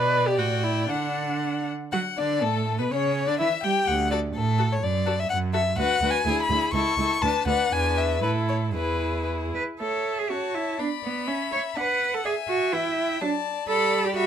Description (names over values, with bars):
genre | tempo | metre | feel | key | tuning
quick classical-period movement for string quartet | 112-128 BPM | 2/4 | rubato | D major, A major from 5.8 s | A4 = 441 Hz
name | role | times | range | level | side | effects
rich violin | melody | 0.0-14.3 s | G#4 to B5 | -30 LUFS | left 12 dB | none
rich violin | second line | 0.0-14.3 s | A4 to C#6 | -27 LUFS | left 4 dB | none
rich viola | accompaniment | 0.0-14.3 s | E3 to D5 | -29 LUFS | right 2 dB | none
clear cello | bass | 0.0-14.3 s | C#2 to C#5 | -26 LUFS | right 4 dB | none
room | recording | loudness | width
light reverb | close, detailed microphones | -22 LUFS | side -9 dB against mid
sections
0.0-1.9 A section; 1.9-9.8 B section; 9.8-14.3 A section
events
none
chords
0.4 A5; 0.9 D; 2.9 C#dim; 3.9 D; 4.8 F#7(no3); 5.8 Bm; 6.3 E7; 6.7 A; 7.2 Bm7/D; 7.7 E7; 8.2 A5; 8.7 E; 9.8 A; 10.8 Bm; 11.3 C#m7; 11.8 D; 12.7 Em; 13.2 D/F#; 13.7 G